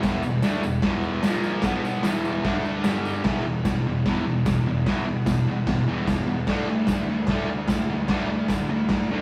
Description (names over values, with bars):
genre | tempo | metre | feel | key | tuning
garage rock duo or trio | 149 BPM | 4/4 | straight | unclear | A4 = 441 Hz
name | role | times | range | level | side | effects
fuzz guitar | riff | 0.0-9.2 s | E2 to D4 | -27 LUFS | equal | distortion
raw garage drum kit | drums | 0.0-9.0 s | crash cymbal, kick drum, snare drum | -27 LUFS | equal | none
tambourine | percussion | 0.0-8.6 s | none | -52 LUFS | equal | none
room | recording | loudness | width
light reverb | rough rehearsal-room recording | -24 LUFS | mono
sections
0.0-3.3 A section; 3.3-9.2 B section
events
none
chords
0.0 E5; 1.2 A#5; 1.6 B5; 2.0 E5; 2.4 D5; 2.8 G5; 3.3 E5; 6.5 D5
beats
| 0.04 0.44 0.84 1.24 | 1.64 2.04 2.44 2.85 | 3.25 3.65 4.06 4.46 | 4.87 5.27 5.67 6.08 | 6.48 6.89 7.29 7.69 | 8.10 8.50 8.90